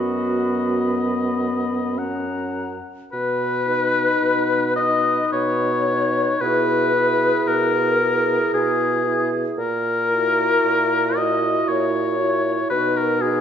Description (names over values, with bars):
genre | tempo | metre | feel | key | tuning
classical, slow romantic movement for wind quintet | 56 BPM | 3/4 | uneven beats, rubato | B major | A4 = 440 Hz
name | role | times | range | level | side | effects
hollow concert flute | melody | 0.0-13.4 s | G#4 to B5 | -26 LUFS | left 7 dB | none
warm oboe | second line | 0.0-13.4 s | G#4 to F#5 | -21 LUFS | left 3 dB | none
mellow French horn | accompaniment | 0.0-13.4 s | B3 to E4 | -26 LUFS | right 1 dB | none
mellow clarinet | accompaniment | 0.0-13.4 s | F#4 to B4 | -28 LUFS | right 5 dB | none
mellow bassoon | bass | 0.0-13.4 s | F#2 to B2 | -25 LUFS | right 2 dB | none
room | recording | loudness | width
moderate scoring stage reverb, RT60 1.6 s | nothing above 7.8 kHz | -18 LUFS | side -8 dB against mid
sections
0.0-3.1 A section; 3.1-13.4 B section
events
none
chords
0.0 B/F#; 2.0 F#; 3.1 B; 6.4 E/B; 9.6 F#7/A#; 12.7 B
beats
0.81 1.98 | 3.13 4.23 5.33 | 6.42 7.47 8.53 | 9.57 10.64 11.69 | 12.71